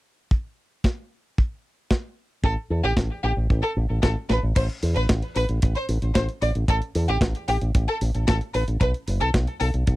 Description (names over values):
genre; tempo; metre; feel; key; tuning
italo disco; 113 BPM; 4/4; straight; A minor; A4 = 445 Hz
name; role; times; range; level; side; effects
kick drum; drums; 0.3-10.0 s; none; -21 LUFS; equal; none
clean 12-bit digital drum machine; drums; 0.8-10.0 s; crash cymbal, hi-hat, snare drum; -27 LUFS; equal; overdrive
rich chamber violin section; melody; 2.4-9.7 s; G4 to D5; -27 LUFS; equal; tape echo
fingered electric bass with an envelope filter; bass; 2.4-10.0 s; F#1 to E2; -23 LUFS; equal; none
room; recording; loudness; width
little or no reverb; dry, close 1970s-style studio recording; -21 LUFS; side -18 dB against mid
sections
0.3-4.6 A section; 4.6-10.0 B section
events
drum fill 4.3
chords
0.3 N.C.; 2.4 A5; 8.8 B5